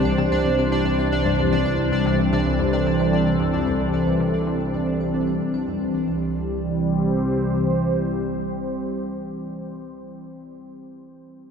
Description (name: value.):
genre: ambient, sequencer-driven space music.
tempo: 112 BPM.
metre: 4/4.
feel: straight.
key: C major.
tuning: A4 = 440 Hz.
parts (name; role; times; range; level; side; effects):
phased analog pad; sustained chords; 0.0-10.4 s; E3 to C5; -22 LUFS; equal; phaser, chorus.
vibraphone with hard mallets; arpeggios; 0.0-11.5 s; G3 to C5; -33 LUFS; right 1 dB; auto-pan, analog delay.
tight sequenced synth; riff; 0.0-6.3 s; C2 to C3; -30 LUFS; left 1 dB; chorus, phaser, analog delay.
analog drone; bass; 0.0-7.6 s; C2; -28 LUFS; equal; chorus.
pulsing gated texture; texture; 0.0-6.1 s; D4 to D5; -28 LUFS; equal; chorus, built-in reverb.
room: wet cathedral reverb, RT60 7.0 s.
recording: in a vast, echoing space.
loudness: -20 LUFS.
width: side -6 dB against mid.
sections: 0.0-6.1 A section; 6.1-10.4 B section.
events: fade-out on synth arpeggio sound 0.0-6.1; fade-out on vibraphone 0.0-6.1.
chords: 0.0 C.